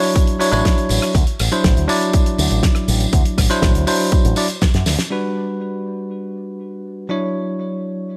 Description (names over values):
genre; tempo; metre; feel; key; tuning
nu-disco, nu disco; 121 BPM; 4/4; straight; D major; A4 = 442 Hz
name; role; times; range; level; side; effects
bell-like tine electric piano; accompaniment; 0.0-8.2 s; F#3 to D5; -22 LUFS; equal; tape echo
damped 70s drum kit; drums; 0.0-5.1 s; hi-hat, rim click, snare drum, tambourine; -24 LUFS; equal; low-pass filter on hats, small room ambience, low-pass filter on snare, low-pass filter on perc, low-pass filter on room
electronic kick drum; drums; 0.2-4.7 s; none; -18 LUFS; equal; small room ambience
picked electric bass with an envelope filter; bass; 0.5-5.0 s; A1 to F#2; -21 LUFS; equal; none
room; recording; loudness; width
studio reverb; none; -18 LUFS; mono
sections
0.0-5.1 A section; 5.1-8.2 B section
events
drum fill 4.7-5.1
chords
0.0 Dmaj9; 1.1 D9; 5.1 Gmaj7; 7.1 Dmaj9